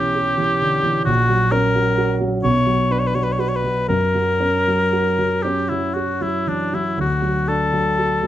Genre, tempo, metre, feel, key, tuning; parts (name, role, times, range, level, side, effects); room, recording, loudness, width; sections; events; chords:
classical, romantic duo for oboe and grand piano; 39-45 BPM (dotted quarters); 6/8; rubato; A4 = 442 Hz
warm oboe; melody; 0.0-8.3 s; D4 to C#5; -19 LUFS; left 2 dB
warm concert grand piano; accompaniment; 0.0-8.3 s; A#1 to G4; -20 LUFS; right 1 dB
light reverb; nothing above 10.7 kHz; -17 LUFS; side -12 dB against mid
0.0-8.3 A section
0.0 C#m7b5/B; 1.1 F#/A#; 2.4 Bm; 3.9 F#; 7.0 D